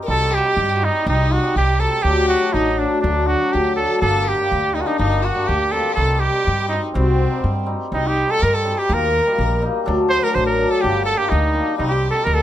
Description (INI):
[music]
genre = klezmer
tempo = 123 BPM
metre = 2/4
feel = straight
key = C dorian sharp4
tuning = A4 = 440 Hz
[part]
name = warm violin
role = second line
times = 0.0-12.4 s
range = C4 to C5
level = -25 LUFS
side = left 3 dB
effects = none
[part]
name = cimbalom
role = accompaniment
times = 0.0-12.4 s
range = F#3 to F#4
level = -22 LUFS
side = left 2 dB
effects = none
[part]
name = clear cornet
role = melody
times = 0.1-12.4 s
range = C4 to C5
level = -20 LUFS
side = right 2 dB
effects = none
[part]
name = upright bass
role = bass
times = 0.1-12.4 s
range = G1 to G2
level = -21 LUFS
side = equal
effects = none
[sound]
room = light reverb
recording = close, detailed microphones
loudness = -16 LUFS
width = side -12 dB against mid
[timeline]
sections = 0.1-7.9 A section; 7.9-12.4 B section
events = speeding up 0.0-12.4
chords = 0.1 Cm; 2.1 D; 4.0 Gm; 6.0 Cm; 8.9 Eb; 9.9 D; 10.8 Gm; 11.8 Cm